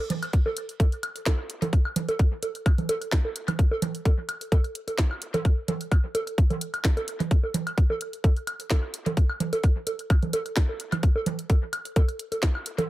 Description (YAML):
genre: techno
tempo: 129 BPM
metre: 4/4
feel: swing 54% on 16ths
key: none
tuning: none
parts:
  - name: garage drum kit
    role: drums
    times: 0.1-12.9 s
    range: hi-hat, snare drum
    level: -33 LUFS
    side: equal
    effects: dub echo
  - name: congas, woodblock and bongos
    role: percussion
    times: 0.1-12.9 s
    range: none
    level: -29 LUFS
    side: right 2 dB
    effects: overdrive, dub echo
  - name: electronic kick drum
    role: drums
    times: 0.3-12.5 s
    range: none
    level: -21 LUFS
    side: equal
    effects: none
room: light reverb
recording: echo-heavy mix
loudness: -23 LUFS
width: side -16 dB against mid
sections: 0.0-12.9 A section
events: none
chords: none